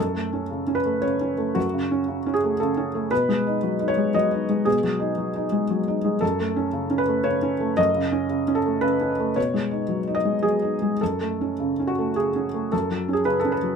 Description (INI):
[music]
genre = neoclassical minimalist piano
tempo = 114 BPM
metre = 3/4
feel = rubato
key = F# dorian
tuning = A4 = 440 Hz
[part]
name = felt-muted upright piano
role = solo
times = 0.0-13.8 s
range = F#2 to D#5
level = -21 LUFS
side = equal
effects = none
[sound]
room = light reverb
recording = minimal, uncompressed stereo recording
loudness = -21 LUFS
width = side -6 dB against mid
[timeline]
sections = 0.0-12.7 A section; 12.7-13.8 A section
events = none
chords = 0.0 F#m; 3.1 B6; 6.2 F#m; 9.4 B6; 11.0 F#m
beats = 0.50 1.04 | 1.56 2.08 2.60 | 3.12 3.63 4.15 | 4.67 5.19 5.70 | 6.22 6.74 7.25 | 7.78 8.31 8.84 | 9.37 9.89 10.43 | 11.00 11.59 12.16 | 12.72 13.26